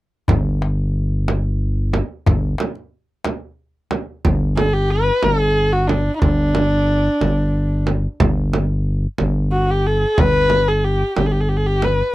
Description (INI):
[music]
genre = Persian modal ensemble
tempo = 61 BPM (dotted quarters)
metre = 6/8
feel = straight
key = G dastgah chahargah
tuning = A4 = 440 Hz
[part]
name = growling FM bass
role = bass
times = 0.3-12.0 s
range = G1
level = -18 LUFS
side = equal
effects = none
[part]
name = frame drum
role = percussion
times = 0.3-12.0 s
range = none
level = -20 LUFS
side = right 2 dB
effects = none
[part]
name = tombak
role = percussion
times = 0.3-4.1 s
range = none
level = -21 LUFS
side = left 2 dB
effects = none
[part]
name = dark kamancheh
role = melody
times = 4.6-12.1 s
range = D4 to B4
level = -18 LUFS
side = equal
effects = none
[sound]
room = little or no reverb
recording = dry, close 1970s-style studio recording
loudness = -16 LUFS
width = side -17 dB against mid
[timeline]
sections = 0.3-4.2 A section; 4.2-12.1 B section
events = none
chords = none